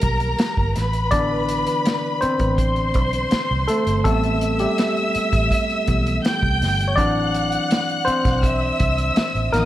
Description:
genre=lush 1970s-style soul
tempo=82 BPM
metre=4/4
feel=straight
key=unclear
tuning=A4 = 439 Hz
part: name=warm studio string section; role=second line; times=0.0-9.7 s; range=A#4 to G6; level=-23 LUFS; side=equal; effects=none
part: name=tine electric piano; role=accompaniment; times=0.0-9.7 s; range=D3 to D5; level=-22 LUFS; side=left 1 dB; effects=none
part: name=vintage muted fingered electric bass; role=bass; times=0.0-9.7 s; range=G1 to C2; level=-23 LUFS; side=right 1 dB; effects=none
part: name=vintage drum kit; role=drums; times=0.0-9.7 s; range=hi-hat, kick drum, snare drum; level=-23 LUFS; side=equal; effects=none
room=light reverb, small room ambience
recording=none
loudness=-18 LUFS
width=side -13 dB against mid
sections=0.0-9.7 A section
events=tine electric piano solo 0.0-9.7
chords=0.0 G7alt; 0.8 Cmaj7/A; 4.1 Am7; 7.0 D7/A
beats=0.40 | 1.13 1.86 2.59 3.32 | 4.05 4.78 5.51 6.25 | 6.98 7.71 8.44 9.17

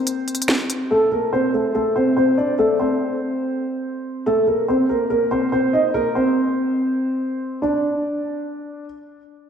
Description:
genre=hip hop, drill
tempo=143 BPM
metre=4/4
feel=half-time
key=unclear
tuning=A4 = 439 Hz
part: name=dark concert grand piano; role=melody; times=0.0-8.8 s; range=A3 to Eb5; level=-18 LUFS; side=equal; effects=wide subtle chorus, diffuse ambient delay
part: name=drill drum kit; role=drums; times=0.1-0.8 s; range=finger snaps, hi-hat, snare drum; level=-22 LUFS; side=equal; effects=none
room=wet lush hall reverb, RT60 1.9 s, small room ambience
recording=dreamy mix soaked in reverb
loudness=-18 LUFS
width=side -7 dB against mid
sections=0.0-7.6 A section; 7.6-9.5 B section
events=break 0.0-0.9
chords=0.0 N.C.; 4.3 C7(no3); 7.6 N.C.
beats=0.07 0.49 | 0.91 1.33 1.75 2.17 | 2.58 3.00 3.42 3.84 | 4.26 4.68 5.10 5.52 | 5.94 6.36 6.78 7.20 | 7.62 8.04 8.46

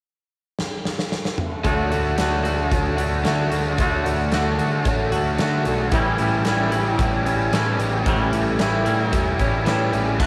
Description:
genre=rock, shoegaze and dream pop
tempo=112 BPM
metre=4/4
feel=straight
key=D major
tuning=A4 = 442 Hz
part: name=huge arena drum kit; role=drums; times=0.6-10.3 s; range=crash cymbal, hi-hat, kick drum, snare drum, toms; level=-28 LUFS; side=equal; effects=cassette tape
part: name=fingerpicked twelve-string acoustic guitar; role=arpeggios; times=1.6-10.3 s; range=E3 to C#4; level=-32 LUFS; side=equal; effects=lush chorus, cassette tape, tape echo
part: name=overdriven electric guitar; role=riff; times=1.6-10.3 s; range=A2 to G4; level=-27 LUFS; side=equal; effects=analog chorus, cassette tape
part: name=twangy electric guitar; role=riff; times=1.6-10.3 s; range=A2 to F#4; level=-26 LUFS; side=equal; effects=reverse reverb, cassette tape
part: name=picked electric bass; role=bass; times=1.6-10.3 s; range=E1 to D3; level=-28 LUFS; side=equal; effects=none
room=light reverb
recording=home recording on cassette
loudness=-21 LUFS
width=mono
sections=0.0-1.7 A section; 1.7-10.2 B section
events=drum fill 0.6-1.7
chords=0.0 N.C.; 1.7 D; 5.9 A7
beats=0.06 0.59 1.12 | 1.66 2.19 2.72 3.26 | 3.79 4.32 4.86 5.39 | 5.92 6.46 6.99 7.53 | 8.06 8.60 9.13 9.66 | 10.20

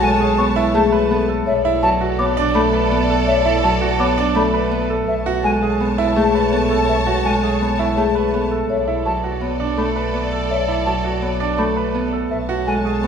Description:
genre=classical, minimalist pattern music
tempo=166 BPM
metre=5/4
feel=straight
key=B dorian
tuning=A4 = 441 Hz
part: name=marimba with soft mallets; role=melody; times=0.0-13.1 s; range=G#4 to C#5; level=-23 LUFS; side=left 6 dB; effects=none
part: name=Celtic harp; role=accompaniment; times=0.0-13.1 s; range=F#3 to B3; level=-22 LUFS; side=left 1 dB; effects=none
part: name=warm studio string section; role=sustained chords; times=0.0-13.1 s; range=A4 to A5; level=-24 LUFS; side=equal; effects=none
part: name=clear concert grand piano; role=arpeggios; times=0.0-13.1 s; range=D4 to B4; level=-22 LUFS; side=right 6 dB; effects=none
part: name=mellow hollow silver concert flute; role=arpeggios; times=0.0-12.7 s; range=E5 to D6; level=-24 LUFS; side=equal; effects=none
part: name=rich double bass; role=bass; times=0.0-13.1 s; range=B1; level=-25 LUFS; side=right 1 dB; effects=none
room=wet scoring stage reverb, RT60 1.6 s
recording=recorded in a church or concert hall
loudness=-16 LUFS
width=side -7 dB against mid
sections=0.0-13.1 A section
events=none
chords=0.0 Amaj9/B; 1.5 Bm9; 5.1 Amaj9/B; 8.7 Bm9; 12.3 Amaj9/B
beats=0.02 0.38 0.74 1.10 | 1.46 1.82 2.19 2.55 2.91 | 3.27 3.63 3.99 4.36 4.72 | 5.08 5.44 5.80 6.16 6.52 | 6.88 7.25 7.61 7.97 8.33 | 8.69 9.05 9.41 9.78 10.14 | 10.50 10.86 11.22 11.58 11.95 | 12.31 12.67 13.03

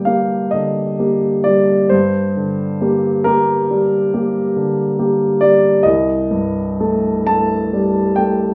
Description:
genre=classical, romantic nocturne for solo piano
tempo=40-48 BPM (dotted quarters)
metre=9/8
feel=rubato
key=G minor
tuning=A4 = 440 Hz
part: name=warm grand piano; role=solo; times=0.0-8.5 s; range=C2 to A5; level=-16 LUFS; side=equal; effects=none
room=moderate large studio reverb, RT60 1.0 s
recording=heard from further back in the room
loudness=-16 LUFS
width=mono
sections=0.0-8.5 A section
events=none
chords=0.0 Gm; 5.9 Am7b5/C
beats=0.55 | 1.93 3.26 4.57 | 5.85 7.27

